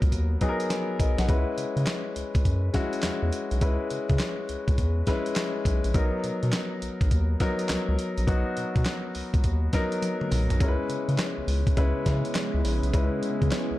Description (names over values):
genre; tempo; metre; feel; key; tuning
R&B, new jack swing; 103 BPM; 4/4; swing 65% on 16ths; C# dorian; A4 = 438 Hz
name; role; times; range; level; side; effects
warm concert grand piano; accompaniment; 0.0-13.8 s; F#3 to F#5; -29 LUFS; left 2 dB; none
round analog bass; bass; 0.0-13.7 s; A#1 to C#3; -26 LUFS; equal; none
dusty soul sampler-style drum kit; drums; 0.0-13.7 s; handclaps, hi-hat, kick drum, snare drum, toms; -27 LUFS; equal; none
lush unison pad; sustained chords; 10.6-13.8 s; C#3 to E4; -33 LUFS; right 3 dB; chorus
cowbell; percussion; 10.6-13.7 s; none; -44 LUFS; right 3 dB; none
room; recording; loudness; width
little or no reverb; dark, warm production; -24 LUFS; side -16 dB against mid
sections
0.0-10.6 A section; 10.6-13.8 B section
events
drum fill 0.1-1.3, 10.0-10.6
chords
0.0 Bmaj7; 1.3 C#m7; 5.9 Bmaj7; 10.6 C#m7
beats
0.12 0.70 | 1.28 1.87 2.45 3.03 | 3.62 4.20 4.78 5.36 | 5.95 6.53 7.11 7.69 | 8.28 8.86 9.44 10.02 | 10.61 11.19 11.77 12.35 | 12.94 13.52